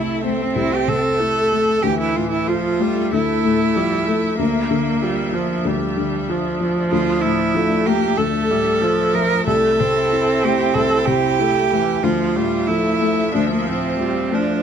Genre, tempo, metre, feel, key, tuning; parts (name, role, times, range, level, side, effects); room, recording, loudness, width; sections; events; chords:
neoclassical piano and strings; 94 BPM; 4/4; rubato; D minor; A4 = 440 Hz
rich cello; second line; 0.0-14.6 s; A3 to Bb4; -19 LUFS; right 3 dB
felt-muted upright piano; accompaniment; 0.0-14.6 s; C2 to F4; -22 LUFS; left 5 dB
warm viola; accompaniment; 0.0-14.6 s; E3 to E4; -22 LUFS; right 2 dB
rich studio string section; sustained chords; 0.0-14.6 s; F3 to E5; -29 LUFS; left 2 dB
light reverb; -16 LUFS; side -8 dB against mid
0.0-14.6 A section
0.0 Am/C; 1.8 Dmadd9; 4.4 Bb/D; 6.9 Dmadd9; 9.5 Am/C; 12.0 Dmadd9